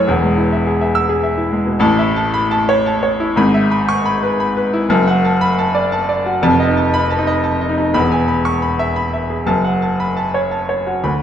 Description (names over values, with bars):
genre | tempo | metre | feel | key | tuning
classical, virtuoso piano study | 117 BPM | 3/4 | rubato | A major | A4 = 439 Hz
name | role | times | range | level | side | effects
clear baby grand piano | solo | 0.0-11.2 s | E1 to E6 | -14 LUFS | equal | none
room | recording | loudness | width
wet recital hall reverb, RT60 1.4 s | dark, warm production | -14 LUFS | side -9 dB against mid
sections
0.0-1.8 A section; 1.8-11.2 B section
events
none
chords
0.1 E; 1.8 A; 3.4 E/G#; 4.9 D/F#; 6.4 F7; 7.9 E; 9.5 F#m